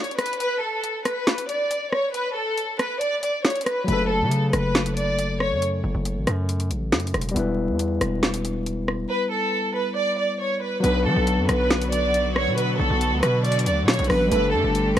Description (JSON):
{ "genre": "hip hop, drill", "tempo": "138 BPM", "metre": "4/4", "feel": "half-time", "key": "B minor", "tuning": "A4 = 440 Hz", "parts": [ { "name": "warm studio violin section", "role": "melody", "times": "0.0-5.6, 9.1-15.0 s", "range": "A4 to D5", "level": "-24 LUFS", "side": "right 1 dB", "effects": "ping-pong delay" }, { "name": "drill drum kit", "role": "drums", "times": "0.0-15.0 s", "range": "hi-hat, rim click, snare drum", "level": "-24 LUFS", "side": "equal", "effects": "overdrive" }, { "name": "overdriven tine electric piano", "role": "accompaniment", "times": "3.8-15.0 s", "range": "C#3 to B4", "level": "-26 LUFS", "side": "left 2 dB", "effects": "none" }, { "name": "distorted 808-style bass", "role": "bass", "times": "3.9-15.0 s", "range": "E1 to F#3", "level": "-25 LUFS", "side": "equal", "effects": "distortion" }, { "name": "bright symphonic string section", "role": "sustained chords", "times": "10.8-15.0 s", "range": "D3 to G4", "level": "-28 LUFS", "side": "right 1 dB", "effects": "none" } ], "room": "light reverb", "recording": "vinyl crackle", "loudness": "-20 LUFS", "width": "side -11 dB against mid", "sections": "0.0-10.8 A section; 10.8-15.0 B section", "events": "break 0.0-3.9", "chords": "0.0 N.C.; 3.9 F#m; 7.4 Em; 10.8 Bm; 14.3 Gsus2" }